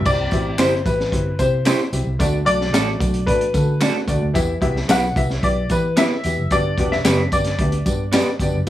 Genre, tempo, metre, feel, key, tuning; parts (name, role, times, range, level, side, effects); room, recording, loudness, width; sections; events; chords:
uptempo 1960s-style soul; 111 BPM; 4/4; straight; A4 = 439 Hz
clear baby grand piano; melody; 0.0-8.1 s; B4 to F#5; -22 LUFS; left 2 dB
vintage muted fingered electric bass; bass; 0.0-8.7 s; E1 to E3; -22 LUFS; equal
dark upright piano; accompaniment; 0.1-8.7 s; G2 to E5; -24 LUFS; left 1 dB
crunchy breakbeat drum kit; drums; 0.1-8.7 s; crash cymbal, hi-hat, kick drum, snare drum; -22 LUFS; equal
tambourine and handclaps; percussion; 0.1-8.5 s; -31 LUFS; left 1 dB
electric guitar through a small old amp; stabs; 0.6-8.3 s; A3 to C5; -22 LUFS; right 4 dB
light reverb; small room ambience; -16 LUFS; side -13 dB against mid
0.1-8.7 A section
0.1 C; 2.2 D; 4.4 Em; 6.5 G